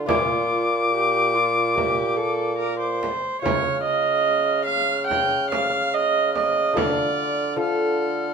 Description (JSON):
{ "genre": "classical, renaissance-style consort dance", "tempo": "72 BPM", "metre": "4/4", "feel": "straight", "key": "unclear", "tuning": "A4 = 438 Hz", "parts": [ { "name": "warm viola", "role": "second line", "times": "0.0-8.3 s", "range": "F4 to G5", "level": "-23 LUFS", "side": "right 4 dB", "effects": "none" }, { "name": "lute", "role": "accompaniment", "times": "0.0-8.3 s", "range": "Bb2 to D5", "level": "-30 LUFS", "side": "left 6 dB", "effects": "none" }, { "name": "mellow bassoon", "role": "bass", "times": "0.0-8.3 s", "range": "Bb2 to D3", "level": "-26 LUFS", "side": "right 2 dB", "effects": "none" }, { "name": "mellow alto recorder", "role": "melody", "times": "0.1-8.3 s", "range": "D6 to F6", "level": "-25 LUFS", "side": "left 6 dB", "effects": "none" }, { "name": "frame drum", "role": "percussion", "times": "0.1-7.2 s", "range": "none", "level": "-28 LUFS", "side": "right 4 dB", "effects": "none" } ], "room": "light reverb", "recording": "minimal, uncompressed stereo recording", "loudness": "-19 LUFS", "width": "side -6 dB against mid", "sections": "0.0-3.4 A section; 3.4-8.3 B section", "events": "none", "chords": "0.1 Bb; 3.4 Db; 6.8 Dm", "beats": "| 0.08 0.93 1.77 2.61 | 3.45 4.28 5.11 5.94 | 6.77 7.60" }